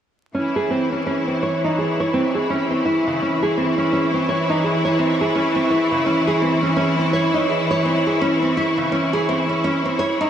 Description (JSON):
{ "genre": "trip hop", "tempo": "84 BPM", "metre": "4/4", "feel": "swing 59% on 16ths", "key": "C# harmonic minor", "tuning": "A4 = 438 Hz", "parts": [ { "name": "rich symphonic string section", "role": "sustained chords", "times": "0.3-10.3 s", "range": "E3 to E4", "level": "-20 LUFS", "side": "left 1 dB", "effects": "vintage 12-bit sampler grit" }, { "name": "nylon-string guitar", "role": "arpeggios", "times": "0.3-10.3 s", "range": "C#3 to C#5", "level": "-21 LUFS", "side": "right 1 dB", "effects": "vintage 12-bit sampler grit, low-pass filter, analog delay" }, { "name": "wind-like tuned noise texture", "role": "texture", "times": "1.0-10.3 s", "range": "C#6", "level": "-29 LUFS", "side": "right 2 dB", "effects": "built-in reverb" } ], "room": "wet lush hall reverb, RT60 2.9 s", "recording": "dreamy mix soaked in reverb, vinyl crackle", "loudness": "-17 LUFS", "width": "side -9 dB against mid", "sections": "0.4-10.3 A section", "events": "none", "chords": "0.4 C#mmaj7" }